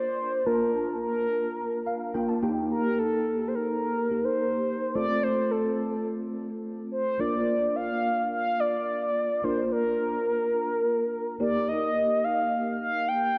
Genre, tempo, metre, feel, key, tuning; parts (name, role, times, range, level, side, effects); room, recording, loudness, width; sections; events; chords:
pop; 107 BPM; 4/4; straight; Bb major; A4 = 440 Hz
mellow horn-like synth lead; melody; 0.0-13.4 s; A4 to G5; -29 LUFS; equal; chorus, tape echo
mellow tine electric piano; accompaniment; 0.0-13.4 s; A3 to A5; -32 LUFS; equal; ensemble chorus
wet lush hall reverb, RT60 2.6 s; dark, warm production; -27 LUFS; mono
0.0-7.2 A section; 7.2-13.4 B section
tine electric piano fill 1.6-2.7
0.0 Bb; 2.4 Eb; 5.0 F; 7.2 Bb; 11.4 Eb